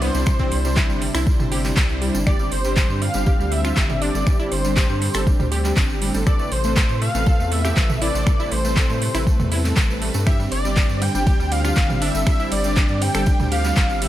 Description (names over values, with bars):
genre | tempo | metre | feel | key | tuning
progressive house | 120 BPM | 4/4 | straight | G mixolydian | A4 = 441 Hz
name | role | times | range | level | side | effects
wide unison lead | melody | 0.0-14.1 s | C5 to G5 | -28 LUFS | equal | sidechain pumping, dub echo
airy dreamy lead | second line | 0.0-14.1 s | C5 to G5 | -33 LUFS | equal | none
lush unison pad | sustained chords | 0.0-14.1 s | C3 to E4 | -30 LUFS | left 1 dB | chorus, sidechain pumping
wide unison pluck | arpeggios | 0.0-14.1 s | G3 to A4 | -30 LUFS | equal | vintage 12-bit sampler grit, sidechain pumping, dub echo
soft supersaw | stabs | 0.0-14.1 s | A2 to D5 | -28 LUFS | right 2 dB | sidechain pumping, dub echo
round analog bass | bass | 0.0-14.1 s | G1 to A2 | -24 LUFS | equal | sidechain pumping
house drum kit | drums | 0.0-14.1 s | finger snaps, handclaps, hi-hat, ride cymbal | -27 LUFS | right 1 dB | none
tambourine | percussion | 0.1-14.0 s | none | -36 LUFS | right 3 dB | none
electronic kick drum | drums | 0.3-13.9 s | none | -18 LUFS | equal | none
electronic congas and toms | percussion | 1.1-13.5 s | none | -29 LUFS | right 3 dB | sidechain pumping on perc, sidechain pumping on toms
room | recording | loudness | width
digital ambience | none | -17 LUFS | side -13 dB against mid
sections
0.0-14.1 A section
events
none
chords
0.0 Cadd9; 2.3 Gsus4; 6.3 Amadd9; 10.3 Gsus4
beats
| 0.27 0.77 1.27 1.77 | 2.27 2.77 3.27 3.77 | 4.27 4.77 5.27 5.77 | 6.27 6.77 7.27 7.77 | 8.27 8.77 9.27 9.77 | 10.27 10.77 11.27 11.77 | 12.27 12.77 13.27 13.77